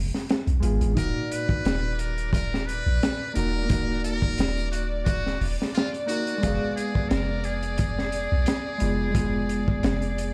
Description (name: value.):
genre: trip hop.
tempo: 88 BPM.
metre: 4/4.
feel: swing 54% on 16ths.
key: Eb harmonic minor.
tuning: A4 = 440 Hz.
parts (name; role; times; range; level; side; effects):
mellow electric guitar; accompaniment; 0.0-10.3 s; Bb2 to F5; -33 LUFS; equal; harmonic tremolo, tape echo.
soft 808-style bass; bass; 0.0-10.3 s; Eb1 to Cb2; -29 LUFS; equal; tube saturation.
crunchy breakbeat drum kit; drums; 0.1-10.3 s; hi-hat, kick drum, snare drum; -29 LUFS; equal; none.
trumpet with metal mute; melody; 1.0-10.3 s; F4 to Cb5; -35 LUFS; equal; tape echo.
bright symphonic string section; sustained chords; 1.0-10.3 s; D5; -37 LUFS; equal; none.
room: small room ambience.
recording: played on a big sound system in a bare room, stone room reverb.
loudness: -26 LUFS.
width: mono.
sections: 0.0-10.3 A section.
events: none.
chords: 0.0 Fdim; 1.0 Ebm; 6.4 Fdim.